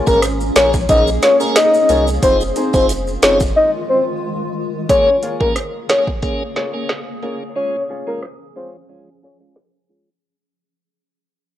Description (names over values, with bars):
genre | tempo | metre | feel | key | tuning
dancehall | 90 BPM | 4/4 | straight | Bb minor | A4 = 442 Hz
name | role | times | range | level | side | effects
granular cloud pad | sustained chords | 0.0-10.2 s | Db3 to Ab4 | -26 LUFS | equal | built-in reverb, sidechain pumping
flamenco guitar | arpeggios | 0.0-10.1 s | Bb3 to Db5 | -25 LUFS | left 2 dB | analog delay
soft octave-layered synth lead | melody | 0.1-8.7 s | Bb4 to Eb5 | -15 LUFS | left 2 dB | chorus, tremolo, analog delay
tonewheel organ | accompaniment | 0.1-10.1 s | Ab3 to Bb4 | -24 LUFS | right 1 dB | overdrive, slow rotary speaker
warm sub bass | bass | 0.1-3.5 s | F1 to C2 | -22 LUFS | right 1 dB | none
afro-pop drum kit | drums | 0.1-9.7 s | hi-hat, kick drum, rim click, snare drum | -18 LUFS | right 1 dB | overdrive
maracas | percussion | 0.1-3.5 s | none | -34 LUFS | right 1 dB | none
room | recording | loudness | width
light reverb | dry, gritty hardware recording, transformer saturation, low-pass filter | -14 LUFS | side -12 dB against mid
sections
0.0-4.9 A section; 4.9-10.2 B section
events
break 3.6-4.9; fade-out 4.9-10.2; filter sweep 4.9-10.2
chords
0.0 Bbm7; 2.2 Fm7; 4.9 Bbm7; 7.6 Db